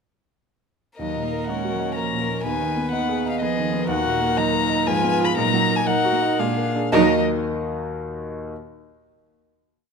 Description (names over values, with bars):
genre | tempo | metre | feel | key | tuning
quick classical-period movement for piano quintet | 110-125 BPM | 3/4 | rubato | Eb minor | A4 = 441 Hz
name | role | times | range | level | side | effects
rich violin | melody | 1.0-7.2 s | Eb5 to Cb6 | -24 LUFS | left 7 dB | none
clear cello | second line | 1.0-7.2 s | Eb3 to Bb3 | -28 LUFS | right 9 dB | none
rich violin | second line | 1.0-7.2 s | Ab4 to Cb5 | -30 LUFS | left 3 dB | none
dark viola | accompaniment | 1.0-7.2 s | Cb4 to Gb4 | -27 LUFS | right 7 dB | none
warm grand piano | accompaniment | 1.0-8.5 s | Eb2 to Eb5 | -24 LUFS | equal | none
room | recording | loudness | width
moderate scoring stage reverb, RT60 1.9 s | close, detailed microphones | -19 LUFS | side -5 dB against mid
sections
1.0-6.9 A section; 6.9-8.5 final chord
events
slowing down 3.2-6.9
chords
1.0 Ebm; 2.4 Abm/Eb; 3.9 Ebm; 4.9 Fdim/Ab; 5.4 Ebm/Bb; 6.4 Bb7; 6.9 Ebm